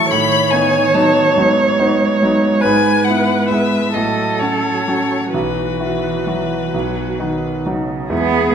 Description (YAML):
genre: classical, slow romantic movement for piano quartet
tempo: 42-49 BPM (dotted quarters)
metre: 6/8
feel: rubato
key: unclear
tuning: A4 = 442 Hz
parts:
  - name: rich violin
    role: melody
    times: 0.0-8.5 s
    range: G#4 to C#6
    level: -20 LUFS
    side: left 6 dB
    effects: none
  - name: rich cello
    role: second line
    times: 0.0-8.5 s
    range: C#3 to B3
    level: -21 LUFS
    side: right 4 dB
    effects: none
  - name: warm concert grand piano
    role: accompaniment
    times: 0.0-8.5 s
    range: B1 to F#4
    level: -19 LUFS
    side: equal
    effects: none
  - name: warm viola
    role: accompaniment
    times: 0.0-8.5 s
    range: F#4 to C#5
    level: -18 LUFS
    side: right 2 dB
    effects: none
room: wet recital hall reverb, RT60 1.3 s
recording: none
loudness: -14 LUFS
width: side -8 dB against mid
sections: 0.0-8.1 A section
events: none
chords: 0.1 B7/A; 2.6 E/G#; 3.9 F#m/A; 5.3 Bsus4; 6.7 B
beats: | 0.11 1.35 | 2.63 3.94 | 5.33 6.73 | 8.12